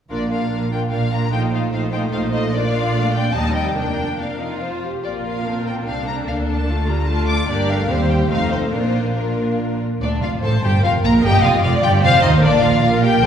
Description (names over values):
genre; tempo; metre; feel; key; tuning
quick classical-period movement for string orchestra; 147 BPM; 3/4; rubato; Bb major; A4 = 439 Hz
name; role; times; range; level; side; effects
warm symphonic violin section; melody; 0.1-13.3 s; Bb4 to D6; -22 LUFS; left 3 dB; none
rich studio violin section; second line; 0.1-13.3 s; D4 to Eb5; -25 LUFS; left 2 dB; none
clear studio viola section; accompaniment; 0.1-13.3 s; G3 to Eb5; -24 LUFS; equal; none
dark symphonic double bass section; bass; 0.1-13.3 s; F1 to Eb2; -22 LUFS; right 2 dB; none
rich symphonic cello section; bass; 0.1-13.3 s; D2 to D3; -22 LUFS; right 2 dB; none
room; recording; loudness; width
wet scoring stage reverb, RT60 1.5 s; recorded in a church or concert hall; -16 LUFS; side -8 dB against mid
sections
0.1-10.0 A section; 10.0-13.3 B section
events
none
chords
0.1 Bb; 1.3 F7/Bb; 2.5 Bb; 3.3 Cm/Eb; 3.8 Bb/F; 4.6 F5; 5.0 Bb; 6.3 Bb/D; 7.5 Gm; 7.9 Cm/Eb; 8.3 F7; 8.7 Bb; 11.2 F5; 12.4 Bb5